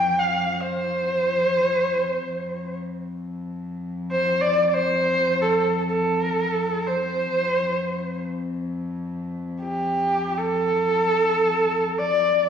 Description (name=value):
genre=mongolian traditional, Mongolian folk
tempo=free time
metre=none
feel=none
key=F gong mode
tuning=A4 = 441 Hz
part: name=clear horsehead fiddle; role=melody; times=0.0-12.5 s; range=G4 to G5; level=-21 LUFS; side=equal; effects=none
part: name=warm cello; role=drone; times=0.0-12.5 s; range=F2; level=-30 LUFS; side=left 2 dB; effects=none
room=wet scoring stage reverb, RT60 1.6 s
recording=worn, warbling old tape, cassette tape, warbly pitch drift, studio reverb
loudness=-21 LUFS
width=side -8 dB against mid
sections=0.0-12.5 A section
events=none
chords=none